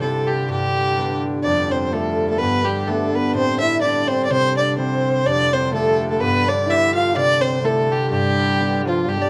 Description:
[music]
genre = celtic folk, Celtic polka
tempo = 126 BPM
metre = 2/4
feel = swing 55% on 8ths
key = G mixolydian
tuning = A4 = 440 Hz
[part]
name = dark fiddle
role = melody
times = 0.0-9.3 s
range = F4 to F5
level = -22 LUFS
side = equal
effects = none
[part]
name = concert harp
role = accompaniment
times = 0.0-9.3 s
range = F2 to G4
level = -26 LUFS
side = equal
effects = none
[part]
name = accordion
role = drone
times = 0.0-9.3 s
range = G2 to D3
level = -31 LUFS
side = equal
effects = none
[part]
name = warm trombone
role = second line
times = 1.4-9.3 s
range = F3 to F4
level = -25 LUFS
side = equal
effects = none
[sound]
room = wet studio reverb, RT60 0.7 s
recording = none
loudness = -19 LUFS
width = mono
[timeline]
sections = 0.0-1.4 A section; 1.4-9.1 A section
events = none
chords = 0.5 G; 1.4 Fadd9; 2.4 G; 3.4 Am; 4.3 C; 5.3 Fadd9; 6.2 Gadd9; 7.2 C; 8.1 G

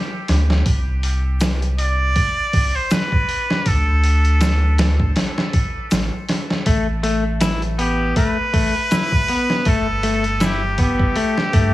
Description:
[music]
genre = trip hop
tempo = 80 BPM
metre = 4/4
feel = swing 56% on 16ths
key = A minor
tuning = A4 = 440 Hz
[part]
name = warm sub bass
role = bass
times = 0.3-11.7 s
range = G1 to G2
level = -18 LUFS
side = equal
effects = none
[part]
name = trip hop sampler-style drum kit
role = drums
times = 0.3-11.7 s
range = hi-hat, kick drum, snare drum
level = -20 LUFS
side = equal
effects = none
[part]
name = egg shaker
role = percussion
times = 1.4-10.6 s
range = none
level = -39 LUFS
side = left 2 dB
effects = none
[part]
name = trumpet with straight mute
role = melody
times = 1.8-11.7 s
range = G4 to D5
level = -23 LUFS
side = right 1 dB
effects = tape echo
[part]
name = semi-hollow electric guitar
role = arpeggios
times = 6.7-11.7 s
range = A3 to E4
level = -21 LUFS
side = left 3 dB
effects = vintage 12-bit sampler grit, digital delay
[sound]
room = little or no reverb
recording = heavily compressed radio sound, small room ambience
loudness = -16 LUFS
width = side -16 dB against mid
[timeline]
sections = 0.0-11.7 A section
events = none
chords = 0.0 N.C.; 0.7 Csus2; 3.7 D5; 6.7 A5; 9.7 G

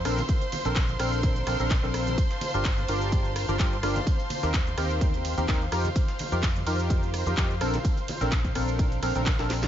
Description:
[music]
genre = piano house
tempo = 127 BPM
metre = 4/4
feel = swing 54% on 16ths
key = unclear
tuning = A4 = 440 Hz
[part]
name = warm chamber violin section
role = sustained chords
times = 0.0-9.7 s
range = C5 to C6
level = -36 LUFS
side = right 2 dB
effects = sidechain pumping
[part]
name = vintage muted fingered electric bass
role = bass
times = 0.0-9.7 s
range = G1 to G2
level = -29 LUFS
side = equal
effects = sidechain pumping
[part]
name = granular cloud pad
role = texture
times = 0.0-9.7 s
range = C5 to Bb5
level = -36 LUFS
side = left 1 dB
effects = built-in reverb, sidechain pumping
[part]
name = percussive organ stab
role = riff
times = 0.1-9.7 s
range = C4 to Bb4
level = -30 LUFS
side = equal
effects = analog chorus, sidechain pumping, dub echo
[part]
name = breakbeat sampler-style drum kit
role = drums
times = 0.1-9.6 s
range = hi-hat, snare drum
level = -43 LUFS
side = right 1 dB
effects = none
[part]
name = house drum kit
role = drums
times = 0.1-9.7 s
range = handclaps, hi-hat, ride cymbal, rim click, shaker, snare drum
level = -35 LUFS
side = equal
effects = studio reverb
[part]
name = tambourine and congas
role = percussion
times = 0.1-9.7 s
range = none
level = -39 LUFS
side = right 2 dB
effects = none
[part]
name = electronic kick drum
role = drums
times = 0.3-9.4 s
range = none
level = -26 LUFS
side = equal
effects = studio reverb
[sound]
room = digital ambience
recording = nothing above 7.5 kHz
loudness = -24 LUFS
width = side -10 dB against mid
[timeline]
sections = 0.0-9.7 A section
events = drum fill 9.4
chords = 0.1 Bbmaj9; 2.2 Gm7; 4.1 Eb6; 5.7 F9sus4; 7.6 Bbmaj9

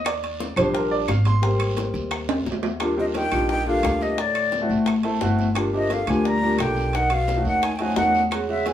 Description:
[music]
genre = Afro-Cuban jazz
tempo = 174 BPM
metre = 4/4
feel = straight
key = Eb major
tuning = A4 = 441 Hz
[part]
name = warm concert grand piano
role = accompaniment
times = 0.0-8.7 s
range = F3 to C6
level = -24 LUFS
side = equal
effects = none
[part]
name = upright bass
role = bass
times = 0.0-8.7 s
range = G1 to Fb2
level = -25 LUFS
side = equal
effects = none
[part]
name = claves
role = percussion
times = 0.0-8.5 s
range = none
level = -36 LUFS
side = left 2 dB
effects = none
[part]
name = bongos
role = percussion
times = 0.1-8.7 s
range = none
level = -32 LUFS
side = left 5 dB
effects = none
[part]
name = congas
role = percussion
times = 0.1-8.7 s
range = none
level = -35 LUFS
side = left 4 dB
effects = none
[part]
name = guiro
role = percussion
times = 0.1-8.7 s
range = none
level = -42 LUFS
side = right 3 dB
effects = none
[part]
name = timbales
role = percussion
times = 0.1-8.7 s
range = none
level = -31 LUFS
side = right 5 dB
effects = none
[part]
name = breathy concert flute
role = melody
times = 3.0-8.7 s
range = D5 to Bb5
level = -23 LUFS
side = equal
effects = none
[part]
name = breathy tenor saxophone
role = second line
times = 3.0-8.7 s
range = A2 to G3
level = -30 LUFS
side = right 1 dB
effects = none
[sound]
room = wet studio reverb, RT60 0.8 s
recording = band playing live in one room, small room ambience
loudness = -20 LUFS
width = side -11 dB against mid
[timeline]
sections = 0.0-2.8 A section; 2.8-8.7 B section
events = grand piano solo 0.0-2.8; drum fill 2.3-2.8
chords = 0.1 Ebmaj7; 1.4 Abmaj7; 2.8 Ebmaj9; 4.2 D7; 5.6 Gm7; 6.9 B7

